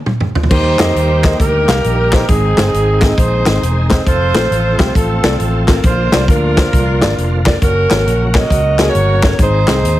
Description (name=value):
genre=uptempo gospel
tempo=135 BPM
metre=4/4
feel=swing 65% on 8ths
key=Eb major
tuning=A4 = 441 Hz
part: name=dark saxophone section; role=melody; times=0.0-10.0 s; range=C4 to Eb5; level=-16 LUFS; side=right 1 dB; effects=none
part: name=natural country drum kit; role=drums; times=0.1-10.0 s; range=crash cymbal, hi-hat, kick drum, snare drum, toms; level=-14 LUFS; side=equal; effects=none
part: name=dark upright piano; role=accompaniment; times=0.5-10.0 s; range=Ab2 to F5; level=-20 LUFS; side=left 2 dB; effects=none
part: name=bright tonewheel organ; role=sustained chords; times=0.5-10.0 s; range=Db3 to A4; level=-24 LUFS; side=right 3 dB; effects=slow rotary speaker, chorus vibrato
part: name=fingered electric bass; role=bass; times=0.5-10.0 s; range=Fb1 to F2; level=-16 LUFS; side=equal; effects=none
part: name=group handclap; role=percussion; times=0.8-9.8 s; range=none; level=-23 LUFS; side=left 3 dB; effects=none
room=light reverb, small room ambience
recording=heavily compressed radio sound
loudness=-10 LUFS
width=side -14 dB against mid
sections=0.5-10.0 A section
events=drum fill 0.0-0.5; stop 0.0-0.5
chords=0.0 N.C.; 0.5 Eb; 2.3 Ab; 4.1 F; 5.8 Bb; 7.6 Gb; 9.4 Ab